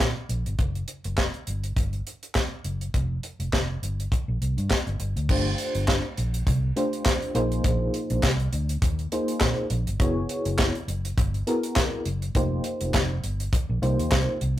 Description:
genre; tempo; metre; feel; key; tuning
early-eighties boogie funk; 102 BPM; 4/4; swing 56% on 16ths; G phrygian; A4 = 440 Hz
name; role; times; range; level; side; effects
vintage muted fingered electric bass; bass; 0.0-14.6 s; F1 to Bb2; -27 LUFS; equal; none
tight funk drum kit; drums; 0.0-14.6 s; crash cymbal, handclaps, hi-hat, kick drum, snare drum; -25 LUFS; equal; none
FM electric piano with tremolo; accompaniment; 5.3-14.4 s; A3 to C#5; -27 LUFS; equal; none
room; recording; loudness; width
moderate small room reverb, RT60 0.5 s; rough rehearsal-room recording, warm saturation; -23 LUFS; side -13 dB against mid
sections
0.0-5.3 A section; 5.3-14.6 B section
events
none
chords
0.0 N.C.; 2.9 Fsus2; 5.3 G9sus4; 7.4 Bb9sus4; 10.0 F#9sus4; 12.4 F9sus4

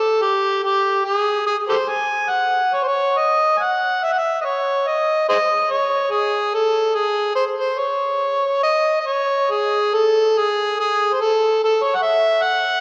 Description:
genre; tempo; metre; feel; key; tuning
fado; 71 BPM; 2/4; uneven beats, rubato; C# harmonic minor; A4 = 440 Hz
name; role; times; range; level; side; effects
overdriven harmonica; solo; 0.0-12.8 s; G4 to G#5; -19 LUFS; equal; none
room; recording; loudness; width
wet church reverb, RT60 3.2 s; recorded in a church or concert hall; -19 LUFS; mono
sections
0.0-9.5 A section; 9.5-12.8 A section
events
none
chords
none

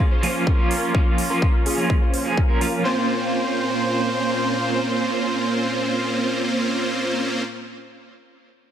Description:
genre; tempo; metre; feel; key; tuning
EDM, festival progressive house; 126 BPM; 4/4; straight; Bb minor; A4 = 440 Hz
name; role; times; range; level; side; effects
electric guitar at the edge of break-up; accompaniment; 0.0-7.7 s; F3 to C5; -26 LUFS; right 3 dB; tremolo, sidechain pumping, tape echo
rich chamber string section; sustained chords; 0.0-7.4 s; Bb2 to C5; -28 LUFS; right 1 dB; sidechain pumping, low-pass filter
supersaw chords; riff; 0.0-7.4 s; Bb3 to C5; -23 LUFS; equal; sidechain pumping, low-pass filter, tape echo
electronic hi-hat; drums; 0.2-2.7 s; none; -30 LUFS; right 3 dB; overdrive
electronic kick drum; drums; 0.5-2.5 s; none; -19 LUFS; equal; none
room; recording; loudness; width
moderate lush hall reverb, RT60 2.0 s; none; -19 LUFS; side -9 dB against mid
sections
0.0-2.9 A section; 2.9-6.7 B section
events
filter sweep on supersaw synth 0.0-2.9; filter sweep on string section 0.0-2.9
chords
0.0 Bbm/F; 2.9 Bbmadd9

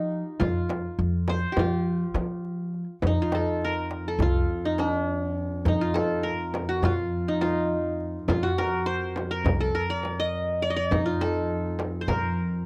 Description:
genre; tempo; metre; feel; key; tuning
Turkish makam ensemble; 206 BPM (eighths); 9/8; straight; F makam hicaz from 3.0 s; A4 = 440 Hz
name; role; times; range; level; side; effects
qanun; melody; 0.0-12.7 s; D4-40c to Eb5; -30 LUFS; equal; none
upright bass; bass; 0.0-12.7 s; C2 to F3; -31 LUFS; equal; none
darbuka; percussion; 0.1-12.5 s; none; -33 LUFS; equal; none
frame drum; percussion; 0.4-12.2 s; none; -35 LUFS; equal; none
dark double bass; drone; 3.0-12.7 s; F2; -36 LUFS; equal; none
room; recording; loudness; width
light reverb; dry, close 1970s-style studio recording; -27 LUFS; mono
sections
0.0-3.0 A section; 3.0-12.7 B section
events
none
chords
none

